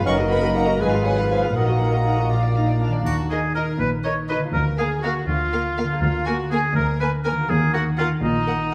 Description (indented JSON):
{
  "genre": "cinematic, playful, whimsical film cue",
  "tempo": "81 BPM (dotted quarters)",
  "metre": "6/8",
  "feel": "straight",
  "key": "Eb minor",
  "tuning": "A4 = 440 Hz",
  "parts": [
    { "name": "warm studio violin section", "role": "melody", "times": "0.0-8.7 s", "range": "D5 to Ab5", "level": "-35 LUFS", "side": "equal", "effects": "none" },
    { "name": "hollow flute section", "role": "second line", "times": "0.0-2.8 s", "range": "Eb5 to Gb5", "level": "-31 LUFS", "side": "equal", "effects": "none" },
    { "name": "warm oboe", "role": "second line", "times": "0.0-8.7 s", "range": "Eb4 to Eb5", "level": "-28 LUFS", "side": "equal", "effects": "none" },
    { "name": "mellow bassoon", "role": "accompaniment", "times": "0.0-2.8 s", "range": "F3 to Db4", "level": "-30 LUFS", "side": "equal", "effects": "none" },
    { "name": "warm studio viola section", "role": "accompaniment", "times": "0.0-8.7 s", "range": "Bb3 to Cb5", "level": "-31 LUFS", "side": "equal", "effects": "none" },
    { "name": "mellow French horn section", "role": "sustained chords", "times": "0.0-2.8 s", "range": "D4 to Cb5", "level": "-30 LUFS", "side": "equal", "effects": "none" },
    { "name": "concert harp", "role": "arpeggios", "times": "0.0-8.7 s", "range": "Gb2 to F5", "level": "-29 LUFS", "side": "equal", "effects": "none" },
    { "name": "warm studio cello section", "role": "bass", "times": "0.0-8.7 s", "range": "D2 to Bb2", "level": "-29 LUFS", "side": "equal", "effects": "none" },
    { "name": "warm studio double bass section", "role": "bass", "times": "0.0-8.7 s", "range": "Gb1 to Eb2", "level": "-29 LUFS", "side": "equal", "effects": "none" },
    { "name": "warm studio violin section", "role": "second line", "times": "0.1-8.7 s", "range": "Eb4 to Db6", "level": "-34 LUFS", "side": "equal", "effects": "none" },
    { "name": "triangle", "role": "percussion", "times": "3.1-4.0 s", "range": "none", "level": "-50 LUFS", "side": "equal", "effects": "none" }
  ],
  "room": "wet scoring stage reverb, RT60 1.6 s",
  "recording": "dark, warm production",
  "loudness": "-21 LUFS",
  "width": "mono",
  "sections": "0.0-3.1 A section; 3.1-8.7 B section",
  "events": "none",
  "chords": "0.1 Ebm/Gb; 0.8 Fdim/Ab; 1.6 Ebm/Bb; 2.3 Bb; 4.5 Bb/D; 6.0 Bb7/D; 7.5 Ebm"
}